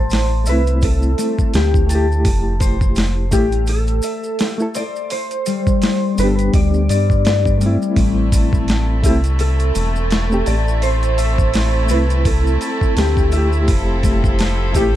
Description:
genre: trip hop.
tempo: 84 BPM.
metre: 4/4.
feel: swing 57% on 16ths.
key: A minor.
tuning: A4 = 444 Hz.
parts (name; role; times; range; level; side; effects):
mellow electric guitar; melody; 0.0-15.0 s; G4 to D5; -24 LUFS; right 1 dB; analog chorus, dub echo.
concert harp; arpeggios; 0.0-15.0 s; G3 to A5; -24 LUFS; left 7 dB; tape echo.
round analog bass; bass; 0.0-15.0 s; E1 to G2; -17 LUFS; equal; none.
dusty soul sampler-style drum kit; drums; 0.1-14.9 s; hi-hat, kick drum, snare drum; -18 LUFS; equal; overdrive.
maracas; percussion; 0.1-14.9 s; none; -32 LUFS; right 1 dB; none.
bright reed electric piano; accompaniment; 0.4-14.9 s; A3 to A4; -23 LUFS; equal; fast tremolo, tape echo.
wind-like tuned noise texture; texture; 8.5-15.0 s; A4; -32 LUFS; right 2 dB; built-in reverb.
rich chamber string section; sustained chords; 8.0-15.0 s; F3 to A4; -26 LUFS; left 1 dB; none.
room: little or no reverb.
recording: dark, warm production.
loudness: -14 LUFS.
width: side -13 dB against mid.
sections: 0.0-15.0 A section.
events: none.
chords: 0.0 Am; 2.3 Fmaj7; 5.1 G; 8.0 Am; 13.7 Fmaj7.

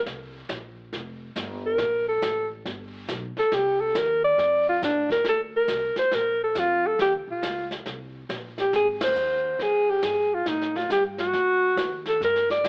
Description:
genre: jazz, small-group swing and bop.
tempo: 138 BPM.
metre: 4/4.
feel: swing 64% on 8ths.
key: Bb major.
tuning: A4 = 440 Hz.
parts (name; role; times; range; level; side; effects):
upright bass; bass; 0.0-12.7 s; F1 to A2; -43 LUFS; equal; none.
jazz brush drum kit; drums; 0.1-12.7 s; brushed snare drum, hi-hat, kick drum, ride cymbal, snare drum; -36 LUFS; equal; none.
breathy alto saxophone; melody; 1.7-12.7 s; D4 to D5; -24 LUFS; equal; plate reverb.
room: moderate studio reverb, RT60 0.8 s.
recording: worn, warbling old tape, cassette tape, warbly pitch drift, AM radio sound.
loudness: -24 LUFS.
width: mono.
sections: 0.0-5.3 A section; 5.3-12.7 B section.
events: alto saxophone solo 0.0-5.3; band accent 8.9.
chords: 0.1 Bbsus2; 0.9 Fsus2; 1.8 N.C.; 2.7 G; 3.5 Cm; 4.4 F; 5.3 Bbadd9; 7.0 Ebsus2 (rootless); 8.7 Ab6; 10.5 F9 (rootless); 11.3 D.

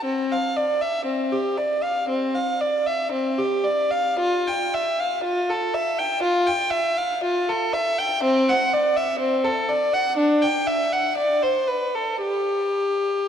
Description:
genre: classical, baroque-style suite movement for unaccompanied violin.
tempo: 59 BPM.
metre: 4/4.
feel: uneven beats, rubato.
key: C major.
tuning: A4 = 445 Hz.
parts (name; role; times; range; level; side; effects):
rich violin; solo; 0.0-13.3 s; C4 to G5; -20 LUFS; equal; none.
room: wet church reverb, RT60 3.5 s.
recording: dark, warm production.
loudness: -20 LUFS.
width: side -8 dB against mid.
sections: 0.1-13.3 A section.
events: none.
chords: none.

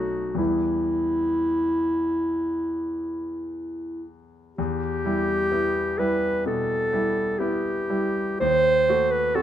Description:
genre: classical, romantic duo for clarinet and grand piano.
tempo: 56-65 BPM.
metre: 4/4.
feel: rubato.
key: E minor.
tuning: A4 = 440 Hz.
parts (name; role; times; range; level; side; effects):
warm clarinet; melody; 0.0-9.4 s; E4 to B#4; -23 LUFS; equal; none.
clear concert grand piano; accompaniment; 0.0-9.4 s; B1 to F#4; -28 LUFS; equal; none.
room: light reverb.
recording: minimal, uncompressed stereo recording.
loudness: -22 LUFS.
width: side -11 dB against mid.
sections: 0.0-4.6 A section; 4.6-9.4 A section.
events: none.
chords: 0.4 Em; 8.4 D#dim7.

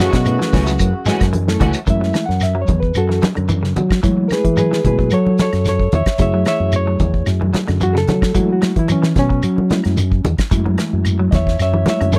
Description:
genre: afrobeat.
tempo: 111 BPM.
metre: 4/4.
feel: straight.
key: F# minor.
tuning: A4 = 439 Hz.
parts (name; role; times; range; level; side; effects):
warm horn section; melody; 0.0-1.3 s; F#4; -26 LUFS; equal; none.
bright bass trombone; second line; 0.0-1.3 s; none; barely audible; none; none.
warm tenor saxophone; second line; 0.0-1.3 s; C#3; -32 LUFS; equal; none.
electric guitar at the edge of break-up; stabs; 0.0-1.8 s; E3 to F#4; -24 LUFS; equal; ensemble chorus.
fingered electric bass; bass; 0.0-12.2 s; C#2 to F#3; -20 LUFS; equal; none.
damped 70s drum kit; drums; 0.0-12.2 s; hi-hat, kick drum, snare drum; -22 LUFS; equal; none.
electric guitar at the edge of break-up; arpeggios; 0.1-12.2 s; C#3 to G#3; -27 LUFS; equal; spring reverb, tape echo.
shekere; percussion; 0.1-12.2 s; none; -27 LUFS; equal; none.
barky reed electric piano; accompaniment; 0.3-12.2 s; G#3 to F#5; -22 LUFS; equal; overdrive, fast tremolo.
claves; percussion; 0.3-12.1 s; none; -33 LUFS; equal; none.
congas; percussion; 0.5-12.2 s; none; -22 LUFS; equal; none.
room: little or no reverb.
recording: dry, close 1970s-style studio recording.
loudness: -16 LUFS.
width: mono.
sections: 0.0-1.9 A section; 1.9-12.2 B section.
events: reed electric piano solo 1.9-12.2.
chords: 0.0 F#m7; 1.9 F#m9.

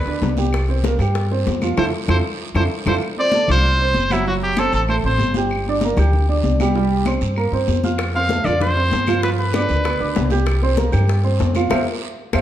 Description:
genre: latin, salsa.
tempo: 193 BPM.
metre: 4/4.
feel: straight.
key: F major.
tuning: A4 = 442 Hz.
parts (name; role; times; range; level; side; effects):
bright trumpet; melody; 0.0-5.3, 8.2-10.3 s; E4 to F5; -21 LUFS; equal; none.
warm grand piano; accompaniment; 0.0-12.4 s; F3 to G6; -22 LUFS; right 4 dB; none.
upright bass; bass; 0.0-12.4 s; Gb1 to G2; -20 LUFS; equal; none.
bongos; percussion; 0.1-2.9, 8.0-12.4 s; none; -28 LUFS; left 5 dB; none.
congas; percussion; 0.1-12.4 s; none; -25 LUFS; left 4 dB; none.
guiro; percussion; 0.2-12.4 s; none; -36 LUFS; right 7 dB; none.
claves; percussion; 0.5-12.4 s; none; -33 LUFS; left 2 dB; none.
room: moderate large studio reverb, RT60 1.4 s.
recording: dark, warm production.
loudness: -16 LUFS.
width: side -11 dB against mid.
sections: 0.0-3.0 A section; 3.0-12.4 A section.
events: drum fill 1.8-3.0; band accent 1.8-3.0, 11.7-12.4.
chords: 0.0 G; 0.5 C5; 1.8 Fmaj7; 3.0 F; 4.3 Gsus24; 5.5 Gm; 6.8 C5; 8.0 F; 9.2 G7; 10.5 C5; 11.7 F5.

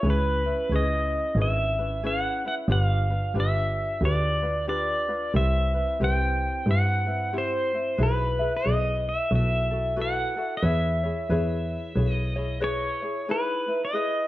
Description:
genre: Hawaiian.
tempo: 91 BPM.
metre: 4/4.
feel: swing 62% on 8ths.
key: E major.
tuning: A4 = 441 Hz.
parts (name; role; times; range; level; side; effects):
pedal steel guitar; melody; 0.0-14.3 s; B4 to G5; -27 LUFS; equal; none.
ukulele; accompaniment; 0.0-14.3 s; C4 to E5; -31 LUFS; left 2 dB; none.
clear double bass; bass; 0.0-12.8 s; G1 to G2; -25 LUFS; equal; none.
room: moderate recital hall reverb, RT60 1.3 s, studio ambience.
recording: dark, warm production.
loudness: -23 LUFS.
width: side -16 dB against mid.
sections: 0.0-13.3 A section.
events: none.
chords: 0.0 C#m7; 2.7 G7; 5.3 Cmaj7; 8.0 E/B; 9.3 B7sus4; 10.6 E6; 13.3 Emaj7.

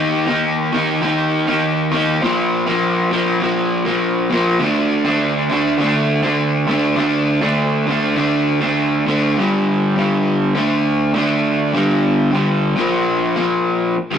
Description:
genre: punk.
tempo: 202 BPM.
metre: 4/4.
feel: straight.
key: unclear.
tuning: A4 = 440 Hz.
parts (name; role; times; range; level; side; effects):
crunchy overdriven guitar; solo; 0.0-14.2 s; G2 to Eb4; -15 LUFS; equal; none.
room: moderate stone room reverb, RT60 1.1 s.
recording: rough rehearsal-room recording, warm saturation.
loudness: -15 LUFS.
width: side -8 dB against mid.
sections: 0.0-9.4 A section; 9.4-14.2 B section.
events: half time 0.0-9.4.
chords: 0.0 Eb5; 2.2 Bb5; 4.6 D5; 9.4 G5; 10.5 D5; 11.7 G5; 12.8 Bb5.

